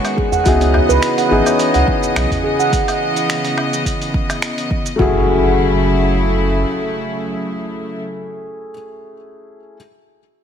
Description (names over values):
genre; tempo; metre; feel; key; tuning
organic downtempo; 106 BPM; 4/4; swing 54% on 16ths; F# dorian; A4 = 440 Hz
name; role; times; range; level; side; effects
felt-muted upright piano; accompaniment; 0.0-9.8 s; A3 to G#4; -22 LUFS; left 3 dB; sidechain pumping, ping-pong delay
rich chamber string section; sustained chords; 0.0-8.0 s; C#3 to D#5; -21 LUFS; equal; sidechain pumping
dusty soul sampler-style drum kit; drums; 0.0-5.0 s; finger snaps, hi-hat, shaker, woodblock; -24 LUFS; right 1 dB; overdrive
handpan; arpeggios; 0.2-5.3 s; C#4 to F#5; -19 LUFS; right 1 dB; ping-pong delay
electronic kick drum; drums; 0.2-5.1 s; none; -20 LUFS; equal; none
djembe; percussion; 0.2-2.4 s; none; -28 LUFS; left 1 dB; none
warm sub bass; bass; 0.5-6.6 s; F#1 to C#2; -17 LUFS; equal; none
impact; sound effects; 5.0-8.8 s; none; -28 LUFS; right 1 dB; none
room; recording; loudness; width
light reverb, small room ambience; none; -14 LUFS; side -8 dB against mid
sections
0.0-5.0 A section; 5.0-7.2 B section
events
none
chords
0.5 C#m9; 5.0 F#m7